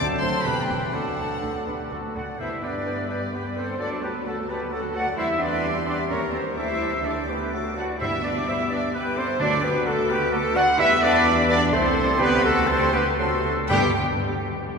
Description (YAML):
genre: quick classical-period movement for symphony orchestra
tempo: 115-131 BPM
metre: 3/4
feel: straight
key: G major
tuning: A4 = 441 Hz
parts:
  - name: warm chamber violin section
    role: melody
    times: 0.0-14.0 s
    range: F#5 to D6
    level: -34 LUFS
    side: left 2 dB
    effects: none
  - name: bright silver concert flute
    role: second line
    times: 0.0-14.0 s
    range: F#4 to A5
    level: -30 LUFS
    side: left 1 dB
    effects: none
  - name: clear oboe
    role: second line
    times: 0.0-13.9 s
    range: B4 to C6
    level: -36 LUFS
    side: right 2 dB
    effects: none
  - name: warm chamber violin section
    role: second line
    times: 0.0-14.0 s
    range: F#4 to G5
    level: -32 LUFS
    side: left 1 dB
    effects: none
  - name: warm clarinet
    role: second line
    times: 0.0-13.9 s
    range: F#4 to F#5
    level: -32 LUFS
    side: left 1 dB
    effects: none
  - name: mellow bassoon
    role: accompaniment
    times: 0.0-13.9 s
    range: D3 to B3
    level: -35 LUFS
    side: right 1 dB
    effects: none
  - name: warm studio viola section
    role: accompaniment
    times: 0.0-14.0 s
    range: F#3 to D5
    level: -33 LUFS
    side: equal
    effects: none
  - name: mellow French horn section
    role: sustained chords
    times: 0.0-13.9 s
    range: D3 to A4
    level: -32 LUFS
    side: left 4 dB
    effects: none
  - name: dark trumpet section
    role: stabs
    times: 0.0-13.9 s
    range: G4 to F#5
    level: -26 LUFS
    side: right 1 dB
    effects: none
  - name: rich chamber double bass section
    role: bass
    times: 0.0-14.0 s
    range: E1 to G2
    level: -33 LUFS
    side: right 2 dB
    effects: none
  - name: rich studio cello section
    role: bass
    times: 0.0-14.0 s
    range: D2 to F#4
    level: -30 LUFS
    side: right 3 dB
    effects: none
  - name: timpani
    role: percussion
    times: 0.0-0.2, 2.4-3.1, 8.0-13.9 s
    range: G2 to D3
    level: -34 LUFS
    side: equal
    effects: none
room: wet cathedral reverb, RT60 5.0 s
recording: minimal, uncompressed stereo recording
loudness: -21 LUFS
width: side -5 dB against mid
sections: 0.0-2.4 A section; 2.4-13.7 B section; 13.7-14.8 C section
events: slowing down 10.1-13.7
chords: 0.5 Em; 0.9 D; 2.4 G; 3.8 D; 5.2 C/E; 6.1 Eb7; 6.6 Dsus4; 7.5 D; 8.0 G; 9.4 D; 10.8 Em; 11.7 Am/C; 12.2 D7sus4; 13.2 D7; 13.7 G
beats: 0.45 | 0.93 1.42 1.91 | 2.40 2.87 3.34 | 3.80 4.26 4.73 | 5.19 5.65 6.11 | 6.58 7.06 7.54 | 8.02 8.48 8.95 | 9.41 9.87 10.34 | 10.80 11.26 11.73 | 12.21 12.69 13.19 | 13.70